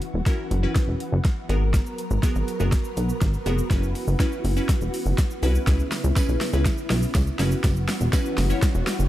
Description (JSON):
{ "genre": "dance-pop", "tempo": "122 BPM", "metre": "4/4", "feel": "straight", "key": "unclear", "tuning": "A4 = 440 Hz", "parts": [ { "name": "glassy wavetable pluck", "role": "accompaniment", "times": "0.0-9.1 s", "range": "B3 to C#5", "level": "-30 LUFS", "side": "equal", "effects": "chorus, sidechain pumping" }, { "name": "ensemble organ-string", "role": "sustained chords", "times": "0.0-9.1 s", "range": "C#3 to A#4", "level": "-32 LUFS", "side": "right 1 dB", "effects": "phaser, ensemble chorus, sidechain pumping" }, { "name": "smooth R&B drum kit", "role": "drums", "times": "0.0-9.1 s", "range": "hi-hat, kick drum, shaker, snare drum", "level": "-24 LUFS", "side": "equal", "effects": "none" }, { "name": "plucky analog bass", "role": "bass", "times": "0.1-9.1 s", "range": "E1 to C#2", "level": "-23 LUFS", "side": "equal", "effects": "sidechain pumping" }, { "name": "tambourine", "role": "percussion", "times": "5.7-8.7 s", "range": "none", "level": "-43 LUFS", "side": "right 9 dB", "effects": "none" }, { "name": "riser", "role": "sound effects", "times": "7.3-9.1 s", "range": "none", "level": "-44 LUFS", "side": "left 1 dB", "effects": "none" } ], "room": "little or no reverb", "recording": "echo-heavy mix", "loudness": "-20 LUFS", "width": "side -14 dB against mid", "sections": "0.0-9.1 A section", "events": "build-up 0.0-9.1; drum fill 0.0-9.1", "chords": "0.0 F#7sus4; 1.5 G#m9; 3.7 F#7sus4; 5.7 C#m7; 7.4 F#7sus4", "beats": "0.26 0.76 1.25 | 1.74 2.23 2.72 3.21 | 3.71 4.20 4.69 5.18 | 5.67 6.17 6.66 7.15 | 7.64 8.13 8.62" }